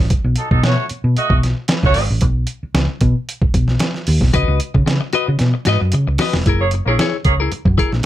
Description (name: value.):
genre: funk.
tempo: 113 BPM.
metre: 4/4.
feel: straight.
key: F# mixolydian.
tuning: A4 = 440 Hz.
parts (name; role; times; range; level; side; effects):
clean electric guitar; accompaniment; 0.0, 4.3-8.0 s; E4 to D#5; -20 LUFS; left 7 dB; none.
hollow-body short-scale fingered electric bass; bass; 0.0-8.0 s; E1 to C#3; -16 LUFS; equal; none.
lo-fi sampler-style drum kit; drums; 0.1-8.1 s; hi-hat, kick drum, snare drum; -18 LUFS; right 1 dB; overdrive.
clear horn section; second line; 0.4-2.1, 6.6-7.3 s; F#3 to D#5; -20 LUFS; right 3 dB; none.
room: light reverb.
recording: none.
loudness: -14 LUFS.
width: side -13 dB against mid.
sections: 0.0-6.5 A section; 6.5-8.1 B section.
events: drum fill 5.4-6.5.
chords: 0.0 N.C.; 4.3 C#9sus4; 6.5 F#9.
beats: | 0.11 0.64 1.17 1.70 | 2.23 2.75 3.28 3.81 | 4.34 4.87 5.40 5.93 | 6.46 6.99 7.52 8.05.